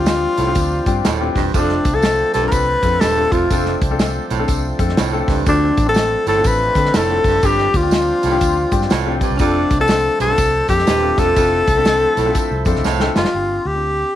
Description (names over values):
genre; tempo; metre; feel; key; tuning
uptempo 1960s-style soul; 122 BPM; 4/4; swing 63% on 8ths; unclear; A4 = 440 Hz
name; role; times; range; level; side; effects
warm tenor saxophone; melody; 0.0-14.2 s; C#4 to B4; -17 LUFS; left 2 dB; none
warm concert grand piano; accompaniment; 0.0-14.1 s; C4 to G5; -24 LUFS; left 8 dB; none
overdriven tonewheel organ; sustained chords; 0.0-13.3 s; F3 to E4; -27 LUFS; right 1 dB; slow rotary speaker
vintage muted fingered electric bass; bass; 0.0-14.0 s; Eb1 to D3; -22 LUFS; equal; none
natural country drum kit; drums; 0.1-13.3 s; hi-hat, kick drum, snare drum; -20 LUFS; equal; none
tambourine; percussion; 0.1-13.2 s; none; -35 LUFS; right 11 dB; none
clear baritone saxophone; riff; 0.4-13.3 s; D2 to A2; -24 LUFS; right 9 dB; none
room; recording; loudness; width
moderate echo chamber reverb, RT60 1.3 s, small room ambience; 1960s-style stereo with parts hard left and right, vinyl crackle; -14 LUFS; side -12 dB against mid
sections
0.0-13.3 A section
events
grand piano fill 12.4-13.3; drum fill 12.8-13.3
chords
0.0 G7sus4; 1.5 F6; 5.5 Dm7; 7.4 G7sus4; 9.4 F6; 13.3 G7sus4